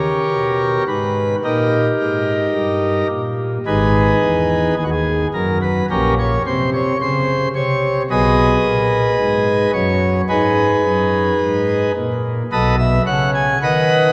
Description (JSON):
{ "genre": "classical, chorale-style piece for pipe organ", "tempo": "54 BPM", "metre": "4/4", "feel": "straight", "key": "G# minor", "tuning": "A4 = 440 Hz", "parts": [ { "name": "pipe organ, principal chorus", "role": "solo", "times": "0.0-14.1 s", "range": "G#1 to G#5", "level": "-17 LUFS", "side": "equal", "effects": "none" } ], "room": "wet cathedral reverb, RT60 4.4 s", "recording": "worn, warbling old tape, cassette tape, warbly pitch drift", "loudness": "-17 LUFS", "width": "mono", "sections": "0.0-14.1 A section", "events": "none", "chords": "0.0 D#7; 3.7 G#m; 5.9 Gdim/Bb; 8.1 G#m/B; 12.5 B7" }